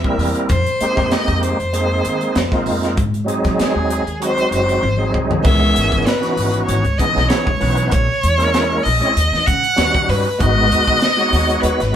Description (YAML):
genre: electric jazz fusion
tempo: 97 BPM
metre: 4/4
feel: straight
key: C# minor from 5.5 s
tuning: A4 = 441 Hz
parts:
  - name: clear violin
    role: melody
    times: 0.0-12.0 s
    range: Ab4 to F#5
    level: -18 LUFS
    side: left 1 dB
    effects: none
  - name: bright tonewheel organ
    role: accompaniment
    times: 0.0-12.0 s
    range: D#3 to C#5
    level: -20 LUFS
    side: right 1 dB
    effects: chorus vibrato, fast rotary speaker
  - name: upright bass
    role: bass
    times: 0.0-11.9 s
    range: Gb1 to Gb3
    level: -20 LUFS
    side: equal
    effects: none
  - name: crisp fusion drum kit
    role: drums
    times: 0.0-11.9 s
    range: crash cymbal, hi-hat, kick drum, snare drum, toms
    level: -21 LUFS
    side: equal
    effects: none
room: moderate studio reverb, RT60 0.8 s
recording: band playing live in one room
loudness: -14 LUFS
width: side -9 dB against mid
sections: 0.0-5.5 A section; 5.5-12.0 B section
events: drum fill 4.8-5.5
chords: 0.5 Fm11; 3.0 Ab7; 5.5 C#m9; 7.9 A#m7b5; 9.2 D#7alt; 10.4 G#m7